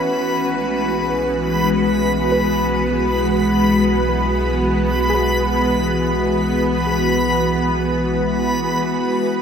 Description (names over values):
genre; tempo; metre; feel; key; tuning
ambient; free time; none; none; unclear; A4 = 440 Hz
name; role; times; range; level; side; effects
evolving wavetable pad; sustained chords; 0.0-9.4 s; E3 to B4; -18 LUFS; equal; ensemble chorus, built-in reverb, phaser
round analog bass; bass; 0.0-9.4 s; B1; -26 LUFS; equal; none
hand-pumped harmonium; drone; 0.0-9.4 s; B3; -27 LUFS; right 1 dB; none
backwards swelling texture; texture; 0.0-9.4 s; B5; -24 LUFS; left 1 dB; built-in reverb
soft round pluck; arpeggios; 2.3-6.9 s; G#4 to B4; -29 LUFS; equal; none
room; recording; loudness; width
wet huge ambient reverb, RT60 8.8 s; dreamy mix soaked in reverb; -16 LUFS; side -7 dB against mid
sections
0.0-9.4 A section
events
none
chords
0.1 Eadd9/B